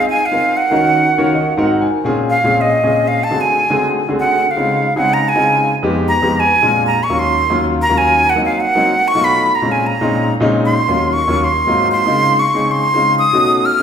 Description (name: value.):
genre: jazz.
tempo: 190 BPM.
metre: 4/4.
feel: straight.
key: Bb minor.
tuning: A4 = 441 Hz.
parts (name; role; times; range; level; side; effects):
breathy bright jazz flute; melody; 0.0-13.8 s; Eb5 to F6; -14 LUFS; right 1 dB; none.
warm concert grand piano; accompaniment; 0.0-13.8 s; Eb2 to Ab5; -16 LUFS; left 1 dB; none.
room: wet recital hall reverb, RT60 1.6 s.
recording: recorded in a church or concert hall.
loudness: -12 LUFS.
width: side -8 dB against mid.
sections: 0.0-2.0 A section; 2.0-12.1 B section; 12.1-13.8 B section.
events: grand piano fill 1.0-2.0; flute solo 2.0-13.8.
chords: 0.0 Fm7; 0.7 Ebm9; 1.3 Ab9; 2.0 Bbm7; 3.2 D7#11; 4.5 Dbmaj9; 5.8 Fm7b5; 6.4 Bb7; 7.0 Ebm7; 8.3 Cm7b5; 8.9 B7#11; 9.5 Bbm7; 10.8 Ebm7; 11.4 Ab13; 12.1 Dbmaj9.